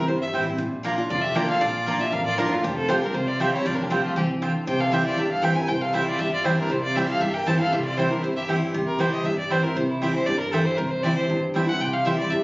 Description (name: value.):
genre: bluegrass.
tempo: 236 BPM.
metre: 4/4.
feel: straight.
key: C mixolydian.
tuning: A4 = 440 Hz.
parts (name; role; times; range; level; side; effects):
clear fiddle; melody; 0.0-12.4 s; E4 to A5; -26 LUFS; equal; none.
picked steel-string acoustic guitar; accompaniment; 0.0-12.4 s; F2 to G4; -24 LUFS; equal; none.
upright bass; bass; 0.0-12.4 s; F1 to C2; -34 LUFS; equal; none.
mandolin; stabs; 0.3-12.2 s; Bb3 to Bb5; -28 LUFS; right 2 dB; none.
clear fiddle; second line; 1.1-8.5 s; G3 to C5; -31 LUFS; equal; none.
room: moderate large studio reverb, RT60 0.8 s.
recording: recorded on a phone in the room, club reverb, nothing above 7.6 kHz.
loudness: -21 LUFS.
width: side -23 dB against mid.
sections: 0.6-8.7 A section; 8.7-12.4 B section.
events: fiddle solo 8.7-12.4.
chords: 0.0 C; 0.6 Bb; 2.6 Fsus2; 4.7 C.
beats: 0.09 0.34 | 0.60 0.85 1.11 1.36 | 1.62 1.87 2.12 2.38 | 2.63 2.89 3.14 3.40 | 3.65 3.91 4.16 4.42 | 4.67 4.93 5.18 5.43 | 5.69 5.94 6.20 6.45 | 6.71 6.96 7.22 7.47 | 7.73 7.98 8.24 8.49 | 8.75 9.00 9.26 9.51 | 9.77 10.02 10.28 10.53 | 10.79 11.04 11.30 11.55 | 11.81 12.06 12.32.